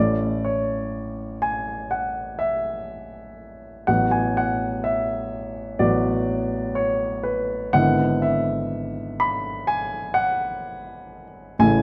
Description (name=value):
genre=classical, romantic character piece for solo piano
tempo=62 BPM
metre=4/4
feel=rubato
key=unclear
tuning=A4 = 440 Hz
part: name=warm grand piano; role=solo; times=0.0-11.8 s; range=G#1 to B5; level=-24 LUFS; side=equal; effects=none
room=moderate recital hall reverb, RT60 1.3 s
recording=dark, warm production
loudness=-24 LUFS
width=mono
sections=0.0-11.8 A section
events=none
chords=0.0 A; 3.9 Bm7/A; 7.7 E7/G#